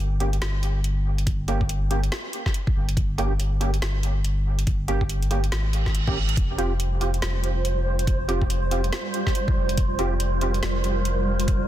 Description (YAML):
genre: deep dubstep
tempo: 141 BPM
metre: 4/4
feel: swing 61% on 16ths, half-time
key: unclear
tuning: A4 = 442 Hz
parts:
  - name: soft dub sub bass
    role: bass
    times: 0.0-11.7 s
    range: F1 to Ab1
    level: -24 LUFS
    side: equal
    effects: tube saturation
  - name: percussive organ stab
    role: stabs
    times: 0.2-10.5 s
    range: Bb3 to G4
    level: -30 LUFS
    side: right 2 dB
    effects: ensemble chorus, dub echo
  - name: garage drum kit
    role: drums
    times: 0.2-11.6 s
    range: hi-hat, snare drum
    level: -32 LUFS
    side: equal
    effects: none
  - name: electronic kick drum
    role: drums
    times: 1.3-11.6 s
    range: none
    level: -24 LUFS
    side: equal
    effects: none
  - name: reverse cymbal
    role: sound effects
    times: 5.7-6.4 s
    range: none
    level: -32 LUFS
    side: right 6 dB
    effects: none
  - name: granular cloud pad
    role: sustained chords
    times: 6.9-11.7 s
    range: G3 to C5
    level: -28 LUFS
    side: right 2 dB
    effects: built-in reverb
  - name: wind-like tuned noise texture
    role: texture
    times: 6.9-11.7 s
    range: C5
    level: -34 LUFS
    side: right 4 dB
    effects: built-in reverb
room: digital ambience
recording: dense, heavily limited modern master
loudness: -21 LUFS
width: side -12 dB against mid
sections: 0.0-11.7 A section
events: reverse cymbal 5.7-6.4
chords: 0.0 Gdim; 6.4 Fsus2